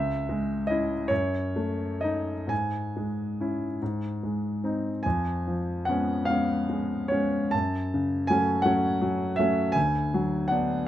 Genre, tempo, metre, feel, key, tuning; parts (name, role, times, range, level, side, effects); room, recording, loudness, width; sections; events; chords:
classical, romantic nocturne for solo piano; 40-56 BPM (dotted quarters); 6/8; rubato; C# minor, F# minor from 5.0 s; A4 = 442 Hz
warm grand piano; solo; 0.0-10.9 s; C#2 to A5; -25 LUFS; equal
little or no reverb; close, detailed microphones; -25 LUFS; side -12 dB against mid
0.0-10.9 A section
0.0 C#m; 1.1 D#dim/F#; 2.5 C#m/G#; 3.8 G#; 5.0 C#7/E#; 7.5 F#m; 9.8 Bm/D